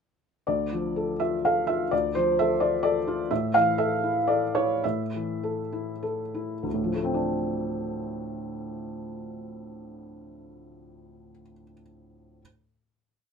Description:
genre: neoclassical minimalist piano.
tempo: 93-132 BPM.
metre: 3/4.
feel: rubato.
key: D minor.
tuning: A4 = 440 Hz.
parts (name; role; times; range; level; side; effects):
felt-muted upright piano; solo; 0.5-12.4 s; D2 to F5; -25 LUFS; equal; none.
room: light reverb.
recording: minimal, uncompressed stereo recording.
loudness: -24 LUFS.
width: side -6 dB against mid.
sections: 0.5-6.7 A section; 6.7-10.2 final chord.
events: slowing down 2.6-6.7.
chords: 0.5 Dm; 3.3 A5; 6.7 Dm7.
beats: | 0.47 0.96 1.44 | 1.92 2.39 2.84 | 3.30 3.77 4.27 | 4.82 5.42 6.03 | 6.65 7.25 7.86 | 8.45 9.03 9.63.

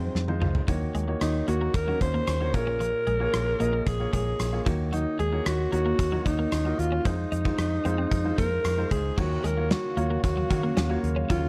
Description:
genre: 1980s-style pop.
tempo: 113 BPM.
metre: 4/4.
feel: straight.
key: Eb dorian.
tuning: A4 = 440 Hz.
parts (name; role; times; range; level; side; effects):
raspy alto saxophone; melody; 0.0-11.5 s; C4 to C5; -31 LUFS; equal; slapback echo.
warm baby grand piano; accompaniment; 0.0-11.5 s; Bb2 to F5; -35 LUFS; equal; none.
vintage muted fingered electric bass; bass; 0.0-11.5 s; Bb1 to Eb3; -31 LUFS; equal; none.
gated 80s drum kit; drums; 0.2-11.4 s; crash cymbal, hi-hat, kick drum, rim click, snare drum, toms; -32 LUFS; equal; none.
twelve-string electric guitar; riff; 0.4-11.4 s; F3 to Eb4; -37 LUFS; equal; subtle chorus, slapback echo.
sweeping resonant pad; sustained chords; 9.2-11.5 s; Db3 to F5; -38 LUFS; equal; chorus, phaser.
room: studio ambience.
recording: none.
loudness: -26 LUFS.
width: mono.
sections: 0.0-9.2 A section; 9.2-11.5 B section.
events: drum fill 0.2-0.7.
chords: 0.0 Fm7; 0.7 Ebm7; 2.5 Bbm7; 4.7 Ebm7; 7.1 Fm7; 9.2 Gbmaj7/Eb.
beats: 0.15 | 0.68 1.21 1.74 2.27 | 2.81 3.34 3.87 4.40 | 4.93 5.46 5.99 6.52 | 7.05 7.58 8.12 8.65 | 9.18 9.71 10.24 10.77 | 11.30.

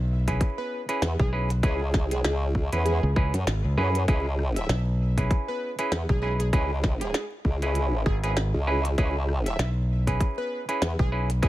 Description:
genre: glitch hop.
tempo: 98 BPM.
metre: 4/4.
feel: swing 57% on 16ths.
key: C# minor.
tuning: A4 = 440 Hz.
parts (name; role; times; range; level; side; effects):
modern bright fingered electric bass; bass; 0.0-11.4 s; G#1 to C#2; -25 LUFS; equal; none.
clav; stabs; 0.3-11.5 s; C#4 to B4; -31 LUFS; right 1 dB; sidechain pumping, ping-pong delay.
electronic kick drum; drums; 0.3-11.5 s; none; -24 LUFS; equal; overdrive.
glitchy drum kit; drums; 0.3-11.5 s; hi-hat, rim click, snare drum; -32 LUFS; equal; overdrive.
plucky unison lead; melody; 0.6-11.5 s; G#4 to E5; -35 LUFS; right 1 dB; ping-pong delay.
formant-sweep wobble bass; bass; 1.0-11.5 s; C#2 to F#2; -25 LUFS; equal; chorus, tube saturation.
room: digital ambience.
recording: vinyl crackle.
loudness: -23 LUFS.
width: side -15 dB against mid.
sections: 0.0-11.5 A section.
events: none.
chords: 0.0 C#m7.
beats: 0.41 1.02 | 1.63 2.24 2.86 3.47 | 4.08 4.69 5.30 5.92 | 6.53 7.14 7.75 8.37 | 8.98 9.59 10.20 10.82 | 11.43.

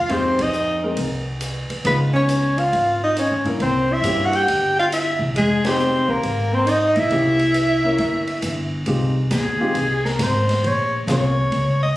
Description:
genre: jazz, small-group swing and bop.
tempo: 137 BPM.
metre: 4/4.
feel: swing 66% on 8ths.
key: F minor.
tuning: A4 = 440 Hz.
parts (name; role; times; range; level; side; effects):
warm soprano saxophone; melody; 0.0-12.0 s; Ab4 to G5; -21 LUFS; equal; none.
clear alto saxophone; second line; 0.0-8.7 s; Ab3 to G4; -21 LUFS; equal; none.
upright bass; bass; 0.0-11.9 s; F1 to G2; -23 LUFS; equal; none.
warm upright piano; accompaniment; 0.1-11.3 s; Ab3 to Bb4; -25 LUFS; left 2 dB; none.
open jazz drum kit; drums; 0.1-11.7 s; hi-hat, kick drum, ride cymbal, snare drum; -29 LUFS; right 1 dB; none.
room: light reverb.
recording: recorded on a phone in the room, studio reverb.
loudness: -17 LUFS.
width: side -16 dB against mid.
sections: 0.0-8.9 A section; 8.9-12.0 B section.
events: band accent 0.3, 5.6; soprano saxophone solo 8.9-12.0.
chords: 0.0 Fm9; 1.8 Db7; 3.6 C7b9; 5.4 Fm9; 7.1 C7b9; 8.9 Fm9; 10.6 Bbm9.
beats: | 0.10 0.53 0.97 1.41 | 1.85 2.29 2.72 3.16 | 3.60 4.04 4.48 4.92 | 5.35 5.79 6.23 6.67 | 7.11 7.55 7.99 8.43 | 8.87 9.31 9.75 10.20 | 10.64 11.08 11.52 11.96.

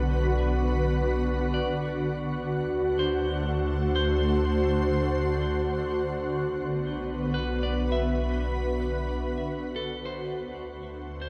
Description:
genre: ambient.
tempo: 62 BPM.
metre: 4/4.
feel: straight.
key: unclear.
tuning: A4 = 441 Hz.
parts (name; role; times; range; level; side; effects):
shimmering ambient pad; sustained chords; 0.0-11.3 s; D3 to C5; -29 LUFS; equal; chorus, built-in reverb, shimmer reverb.
deep rumbling drone; bass; 0.0-11.3 s; B1 to D2; -33 LUFS; equal; built-in reverb.
clean electric guitar; arpeggios; 1.5-11.3 s; A4 to E5; -40 LUFS; equal; delay, shimmer reverb.
room: wet huge ambient reverb, RT60 9.0 s.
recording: in a vast, echoing space.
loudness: -27 LUFS.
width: mono.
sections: 0.0-11.3 A section.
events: fade-out 7.2-11.3.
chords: 0.0 Bm; 2.0 D7; 5.9 Bm; 9.8 D7.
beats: 0.08 1.05 | 2.02 2.99 3.96 4.92 | 5.89 6.86 7.83 8.79 | 9.76 10.73.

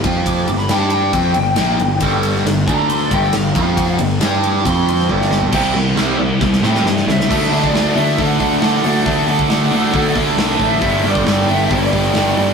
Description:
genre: hard rock.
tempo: 136 BPM.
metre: 4/4.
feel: straight.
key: unclear.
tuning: A4 = 440 Hz.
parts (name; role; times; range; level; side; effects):
overdriven semi-hollow guitar; riff; 0.0-12.5 s; G2 to G4; -18 LUFS; right 4 dB; phaser.
sludgy distorted guitar; riff; 0.0-12.5 s; G2 to G4; -21 LUFS; left 4 dB; overdrive.
fuzz picked electric bass; bass; 0.0-12.5 s; G1 to A2; -20 LUFS; left 1 dB; overdrive.
huge arena drum kit; drums; 0.0-12.5 s; crash cymbal, hi-hat, kick drum, ride cymbal, snare drum, toms; -21 LUFS; equal; none.
lead guitar through a small cranked amp; melody; 0.3-12.5 s; D5 to D6; -22 LUFS; left 1 dB; overdrive.
scooped high-gain guitar; riff; 5.5-12.5 s; G2 to G4; -23 LUFS; left 1 dB; distortion.
room: moderate stone room reverb, RT60 1.2 s.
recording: rough rehearsal-room recording, tube saturation.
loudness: -13 LUFS.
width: side -6 dB against mid.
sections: 0.0-5.5 A section; 5.5-7.3 B section; 7.3-12.5 C section.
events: lead electric guitar solo 0.0-5.5; drum fill 5.1-5.5, 6.4-7.3.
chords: 0.0 F5; 0.5 G5; 2.7 D5; 3.1 G5; 3.6 F5; 4.0 G5; 4.7 F5; 5.1 G5; 5.5 C; 7.3 D; 10.8 G.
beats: | 0.25 0.69 1.13 1.57 | 2.01 2.45 2.89 3.33 | 3.77 4.21 4.65 5.09 | 5.53 5.97 6.41 6.85 | 7.29 7.73 8.17 8.61 | 9.05 9.49 9.94 10.38 | 10.82 11.26 11.70 12.15.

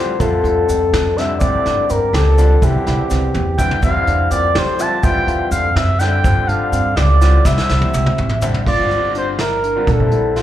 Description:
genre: progressive instrumental, band music in an uneven meter.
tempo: 248 BPM (eighths).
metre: 5/8.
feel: straight.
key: F major.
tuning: A4 = 440 Hz.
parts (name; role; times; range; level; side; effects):
expressive synth lead; melody; 0.0-10.4 s; G4 to A5; -18 LUFS; left 1 dB; chorus, slapback echo.
clear trombone; second line; 0.0-8.4 s; E2 to F3; -28 LUFS; left 3 dB; slapback echo, ping-pong delay.
bright concert grand piano; accompaniment; 0.0-10.4 s; D3 to G5; -25 LUFS; left 2 dB; slapback echo.
barky tine electric piano; arpeggios; 0.0-10.4 s; C4 to G4; -26 LUFS; right 1 dB; analog chorus, slapback echo.
upright bass; bass; 0.0-10.4 s; G1 to F3; -17 LUFS; equal; none.
vintage brush drum kit; drums; 0.2-10.4 s; crash cymbal, hi-hat, kick drum, snare drum, toms; -21 LUFS; right 1 dB; none.
tube shaker; percussion; 0.2-8.6 s; none; -36 LUFS; left 2 dB; none.
room: light reverb, studio reverb.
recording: live gig heard through the venue's PA, club reverb.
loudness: -13 LUFS.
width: side -12 dB against mid.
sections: 0.0-8.7 A section; 8.7-10.4 B section.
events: drum fill 3.3-3.8, 7.5-8.7; grand piano fill 7.9-8.7.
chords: 0.0 Fmaj7; 1.4 G9sus4; 2.6 C; 3.8 F5; 6.2 G9sus4; 7.5 C; 8.7 Gm7; 9.9 Bbmaj7.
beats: | 0.20 0.45 0.69 0.93 1.17 | 1.41 1.65 1.90 2.14 2.38 | 2.62 2.86 3.10 3.35 3.59 | 3.83 4.07 4.31 4.55 4.80 | 5.04 5.28 5.52 5.76 6.01 | 6.25 6.49 6.73 6.97 7.22 | 7.46 7.70 7.94 8.18 8.43 | 8.67 8.91 9.15 9.39 9.64 | 9.88 10.12 10.36.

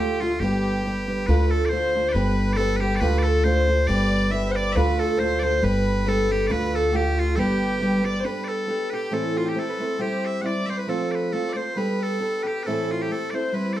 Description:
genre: celtic folk, Celtic polka.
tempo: 137 BPM.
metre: 2/4.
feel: swing 55% on 8ths.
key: G mixolydian.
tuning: A4 = 439 Hz.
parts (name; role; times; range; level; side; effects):
loud bright bagpipes; melody; 0.0-13.8 s; F4 to F#5; -29 LUFS; right 1 dB; none.
warm fiddle; second line; 0.0-13.8 s; F4 to E5; -27 LUFS; left 2 dB; none.
fingerpicked steel-string acoustic guitar; accompaniment; 0.0-13.8 s; A2 to C5; -25 LUFS; right 2 dB; none.
upright bass; bass; 0.0-8.2 s; G1 to D2; -24 LUFS; equal; none.
room: wet studio reverb, RT60 0.6 s.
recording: heard from further back in the room.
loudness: -20 LUFS.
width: side -13 dB against mid.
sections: 0.0-1.3 A section; 1.3-8.2 A section; 8.2-13.8 B section.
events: none.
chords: 0.4 G; 1.3 Dm; 2.1 G; 3.0 Dm; 3.9 G; 4.8 Dm; 5.6 G; 6.5 Dm; 7.4 G; 8.2 Gadd9; 9.1 Am; 10.0 C/G; 10.9 F; 11.8 Gadd9; 12.6 Am.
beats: | 0.40 0.83 | 1.27 1.71 | 2.14 2.58 | 3.01 3.45 | 3.88 4.32 | 4.75 5.19 | 5.63 6.06 | 6.50 6.94 | 7.37 7.81 | 8.25 8.69 | 9.13 9.56 | 10.00 10.44 | 10.88 11.32 | 11.76 12.20 | 12.64 13.08 | 13.52.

